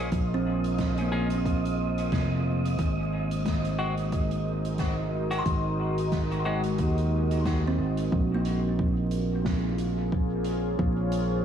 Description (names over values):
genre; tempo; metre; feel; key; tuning
ambient dub; 90 BPM; 4/4; swing 57% on 16ths; Bb minor; A4 = 445 Hz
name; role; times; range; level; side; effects
deep dark ambient pad; sustained chords; 0.0-11.4 s; Ab3 to Db5; -32 LUFS; left 1 dB; chorus, built-in reverb, vintage 12-bit sampler grit
clean electric guitar; stabs; 0.0-6.6 s; Ab3 to Ab4; -38 LUFS; left 4 dB; dub echo
fingered electric bass; bass; 0.0-11.4 s; F1 to Eb2; -27 LUFS; equal; none
wind-like tuned noise texture; texture; 0.0-8.1 s; Eb5; -39 LUFS; right 3 dB; built-in reverb
electronic kick drum; drums; 0.1-10.9 s; none; -30 LUFS; equal; none
soft-mallet drum kit; drums; 0.1-11.3 s; hi-hat, snare drum; -40 LUFS; right 2 dB; dub echo
kalimba; arpeggios; 0.3-11.0 s; Bb3 to C6; -34 LUFS; right 3 dB; dub echo
room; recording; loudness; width
light reverb, small room ambience; vinyl crackle; -25 LUFS; side -9 dB against mid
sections
0.0-8.1 A section; 8.1-11.4 B section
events
none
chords
0.0 Bb7(no3); 2.8 Ab7; 8.1 Bbm7